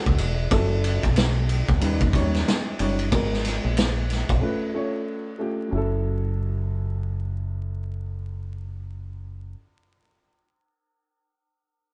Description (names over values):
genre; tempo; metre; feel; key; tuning
hip hop, jazz-hop; 92 BPM; 4/4; swing 60% on 16ths; F# dorian; A4 = 442 Hz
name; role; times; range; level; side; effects
dark grand piano; accompaniment; 0.0-9.6 s; F#3 to F#5; -31 LUFS; equal; none
deep dub fingered electric bass; bass; 0.1-9.5 s; E1 to D#2; -28 LUFS; equal; none
vintage drum kit; drums; 0.1-4.4 s; hi-hat, kick drum, ride cymbal, snare drum; -27 LUFS; equal; none
room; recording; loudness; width
light reverb; band playing live in one room, vinyl crackle, nothing above 10.3 kHz; -25 LUFS; mono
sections
0.5-5.7 A section; 5.7-8.3 B section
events
grand piano fill 0.0-0.5; break 4.4-5.7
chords
0.0 F#m7; 1.8 D#7alt; 3.1 G#m9; 4.4 C#aug7; 5.7 F#m7